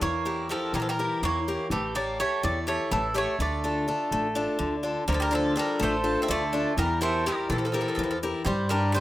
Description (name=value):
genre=greek folk, Greek bouzouki band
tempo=249 BPM (eighths)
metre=7/8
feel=straight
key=D harmonic minor, D minor from 5.1 s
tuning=A4 = 440 Hz
part: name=Greek bouzouki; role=melody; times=0.0-9.0 s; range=G4 to E5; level=-30 LUFS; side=right 1 dB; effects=none
part: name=Greek bouzouki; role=second line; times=0.0-9.0 s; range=E3 to C4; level=-33 LUFS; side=right 3 dB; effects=none
part: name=picked steel-string acoustic guitar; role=accompaniment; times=0.0-9.0 s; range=D3 to C#5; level=-28 LUFS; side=left 2 dB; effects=none
part: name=upright bass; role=bass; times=0.0-9.0 s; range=A1 to Bb2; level=-32 LUFS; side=equal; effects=none
room=light reverb, studio reverb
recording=rough home demo mix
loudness=-24 LUFS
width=side -15 dB against mid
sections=0.0-5.1 A section; 5.1-9.0 B section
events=none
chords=0.0 Edim; 1.7 A7; 3.4 Dm; 6.8 Edim; 8.5 G